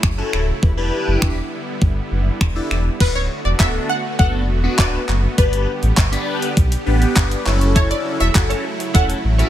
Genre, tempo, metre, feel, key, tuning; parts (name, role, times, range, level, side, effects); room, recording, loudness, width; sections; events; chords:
dance-pop; 101 BPM; 4/4; straight; D major; A4 = 439 Hz
supersaw pad; sustained chords; 0.0-9.5 s; C#3 to G4; -27 LUFS; right 2 dB; sidechain pumping
sub bass with octave; bass; 0.0-9.4 s; D1 to B1; -19 LUFS; equal; sidechain pumping
gated 80s digital drum machine; drums; 0.0-9.5 s; crash cymbal, finger snaps, handclaps, hi-hat, kick drum; -17 LUFS; equal; gated reverb, overdrive
big bright polysynth; accompaniment; 0.2-9.5 s; B3 to B4; -23 LUFS; left 2 dB; phaser, sidechain pumping
wide unison pluck; melody; 3.0-9.5 s; B4 to F#5; -24 LUFS; equal; wide subtle chorus, ping-pong delay
direct-recorded clean electric guitar; riff; 7.8-9.5 s; E4 to C#5; -28 LUFS; right 6 dB; ensemble chorus
digital ambience; -15 LUFS; side -12 dB against mid
0.0-3.0 A section; 3.0-9.5 B section
0.0 F#m7; 0.6 Em7; 3.0 D6; 5.4 G; 7.5 F#m7